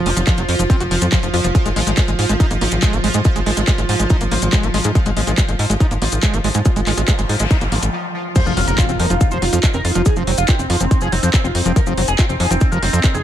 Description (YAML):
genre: psychedelic trance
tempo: 141 BPM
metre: 4/4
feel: straight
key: F minor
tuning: A4 = 443 Hz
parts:
  - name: pulsing gated texture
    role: sustained chords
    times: 0.0-13.2 s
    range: F3 to F4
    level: -24 LUFS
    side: right 2 dB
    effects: chorus, built-in reverb, sidechain pumping
  - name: overdriven acid bass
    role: riff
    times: 0.0-13.2 s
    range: F3 to Gb4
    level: -23 LUFS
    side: moving between left 7 dB and right 7 dB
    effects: distortion, auto-pan, vintage 12-bit sampler grit, sidechain pumping, dub echo
  - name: tight sequencer bass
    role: bass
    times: 0.0-13.2 s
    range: F1 to Ab2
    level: -19 LUFS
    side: equal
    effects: none
  - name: drum and bass drum kit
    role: drums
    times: 0.1-13.1 s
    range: crash cymbal, handclaps, hi-hat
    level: -24 LUFS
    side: equal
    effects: none
  - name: maracas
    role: percussion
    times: 0.2-13.2 s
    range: none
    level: -29 LUFS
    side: left 6 dB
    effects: none
  - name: electronic kick drum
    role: drums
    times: 0.3-13.1 s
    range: none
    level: -16 LUFS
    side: equal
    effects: distortion
  - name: noise sweep and impact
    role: sound effects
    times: 7.0-10.1 s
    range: none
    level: -27 LUFS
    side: equal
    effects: none
  - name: overdriven synth lead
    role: melody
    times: 8.4-13.2 s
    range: C4 to C5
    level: -21 LUFS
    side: equal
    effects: phaser, sidechain pumping, dub echo
room: little or no reverb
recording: none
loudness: -14 LUFS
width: side -11 dB against mid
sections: 0.0-8.4 A section; 8.4-13.2 B section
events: noise sweep 7.0-8.4; break 7.9-8.4; drop 8.4-13.2; impact 8.4-10.1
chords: 0.0 F5; 1.5 Ab5; 8.4 F5